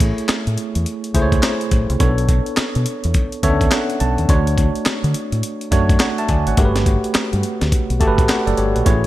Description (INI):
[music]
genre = R&B, new jack swing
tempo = 105 BPM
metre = 4/4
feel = swing 63% on 16ths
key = unclear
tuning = A4 = 442 Hz
[part]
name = tine electric piano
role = accompaniment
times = 0.0-9.1 s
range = A3 to A5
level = -20 LUFS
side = right 1 dB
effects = medium stereo tremolo
[part]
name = deep dub fingered electric bass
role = bass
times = 0.0-9.1 s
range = F#1 to D3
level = -19 LUFS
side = equal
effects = none
[part]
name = breakbeat sampler-style drum kit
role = drums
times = 0.0-9.1 s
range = handclaps, hi-hat, kick drum, snare drum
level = -18 LUFS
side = equal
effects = none
[sound]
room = light reverb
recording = bright 1980s-style digital production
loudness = -15 LUFS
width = side -15 dB against mid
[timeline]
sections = 0.0-9.1 A section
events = tine electric piano fill 3.1-4.3, 7.7-8.9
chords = 0.0 Amaj7; 2.0 Bm9; 4.3 Dmaj7; 6.6 Gmaj9